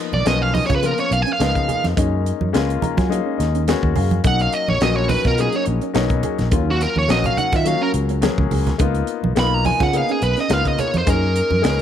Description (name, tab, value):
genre	electric jazz fusion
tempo	106 BPM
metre	4/4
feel	swing 53% on 16ths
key	Db mixolydian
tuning	A4 = 439 Hz
part	warm grand piano	accompaniment	0.0-11.8 s	F3 to Bb5	-23 LUFS	left 12 dB	plate reverb
part	smooth overdriven lead guitar	melody	0.1-11.8 s	Gb4 to Cb6	-20 LUFS	right 2 dB	slapback echo, plate reverb
part	sustaining fretless electric bass	bass	0.1-11.8 s	Bb1 to Gb3	-20 LUFS	equal	none
part	congas	percussion	0.1-11.6 s	none	-26 LUFS	right 5 dB	none
part	tight funk drum kit	drums	0.3-11.8 s	hi-hat, kick drum, snare drum	-23 LUFS	right 1 dB	none
part	mellow electric guitar	stabs	0.5-11.3 s	Db4 to Ab4	-28 LUFS	right 11 dB	ensemble chorus, plate reverb
room	light reverb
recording	none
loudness	-16 LUFS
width	side -9 dB against mid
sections	0.0-11.8 A section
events	lead electric guitar solo 0.0-11.8; grand piano fill 2.5-4.2; drum fill 8.2-8.8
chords	0.0 Db13; 2.0 Gb69; 4.2 Cbmaj9; 6.5 Ebm9; 8.8 Db13; 11.1 Gb69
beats	0.26 0.83 1.40 | 1.97 2.54 3.11 3.68 | 4.25 4.81 5.38 5.95 | 6.52 7.09 7.66 8.22 | 8.79 9.36 9.93 10.50 | 11.07 11.64